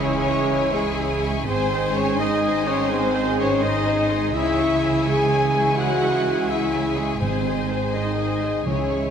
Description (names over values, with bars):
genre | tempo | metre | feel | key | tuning
cinematic | 84 BPM (dotted quarters) | 6/8 | straight | C# harmonic minor | A4 = 437 Hz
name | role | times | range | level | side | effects
warm symphonic violin section | melody | 0.0-9.1 s | G#4 to G#5 | -32 LUFS | left 4 dB | none
warm studio violin section | second line | 0.0-9.1 s | B#4 to C#6 | -32 LUFS | left 3 dB | none
rich symphonic viola section | accompaniment | 0.0-9.1 s | E4 to B#4 | -31 LUFS | right 2 dB | none
mellow French horn section | sustained chords | 0.0-9.1 s | G#3 to G#4 | -24 LUFS | left 3 dB | none
warm symphonic string section | sustained chords | 0.0-9.1 s | G#3 to G#5 | -30 LUFS | left 1 dB | none
warm trombone section | sustained chords | 0.0-9.1 s | D#3 to G#3 | -30 LUFS | right 5 dB | none
dark trumpet | stabs | 0.0-9.1 s | G#4 to G#5 | -27 LUFS | equal | none
clear symphonic cello section | bass | 0.0-9.1 s | G#2 to C#3 | -29 LUFS | right 5 dB | none
rich symphonic double bass section | bass | 0.0-9.1 s | G#1 to C#2 | -30 LUFS | right 5 dB | none
timpani | percussion | 7.2-9.1 s | G#2 to C#3 | -29 LUFS | right 1 dB | none
room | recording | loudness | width
wet concert hall reverb, RT60 2.1 s | none | -19 LUFS | side -8 dB against mid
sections
0.0-9.1 A section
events
none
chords
0.0 C#m; 1.5 G#; 4.3 C#m; 7.2 G#